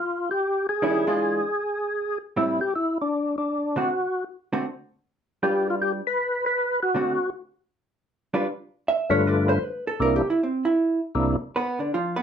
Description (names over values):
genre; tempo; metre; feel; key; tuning
jazz; 157 BPM; 4/4; swing 64% on 8ths; G mixolydian; A4 = 439 Hz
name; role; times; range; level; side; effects
overdriven tonewheel organ; melody; 0.0-11.4 s; C2 to B4; -23 LUFS; left 1 dB; slow rotary speaker, chorus vibrato
hollow-body jazz guitar; accompaniment; 0.8-12.2 s; A2 to E5; -24 LUFS; right 2 dB; none
room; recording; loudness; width
wet studio reverb, RT60 0.5 s; none; -22 LUFS; side -8 dB against mid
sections
0.0-8.5 A section; 8.5-12.2 B section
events
hollow-body jazz guitar solo 8.5-12.2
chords
0.0 G7(no3); 0.8 E7b9; 2.4 Am7; 3.9 D7; 5.4 G7; 6.9 D7; 8.5 G7; 10.0 C7; 11.5 G7 (rootless)